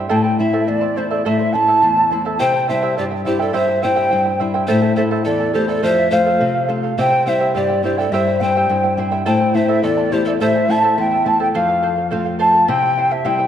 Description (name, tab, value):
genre	andean folk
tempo	105 BPM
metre	2/4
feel	straight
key	unclear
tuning	A4 = 439 Hz
part	charango	accompaniment	0.0-13.5 s	E4 to A5	-24 LUFS	right 6 dB	none
part	flamenco guitar	accompaniment	0.0-13.5 s	E2 to F4	-20 LUFS	left 3 dB	none
part	large quena	melody	0.1-13.5 s	C5 to A5	-17 LUFS	equal	tape echo
part	breathy mellow pan flute	second line	2.4-11.3 s	G4 to E5	-21 LUFS	left 1 dB	none
room	wet concert hall reverb, RT60 1.9 s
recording	dark, warm production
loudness	-14 LUFS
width	side -9 dB against mid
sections	0.0-2.4 A section; 2.4-11.5 A section; 11.5-13.5 B section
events	none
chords	0.1 Am; 2.4 C; 4.7 Am; 5.8 F; 7.0 C; 9.3 Am; 11.5 F; 12.7 C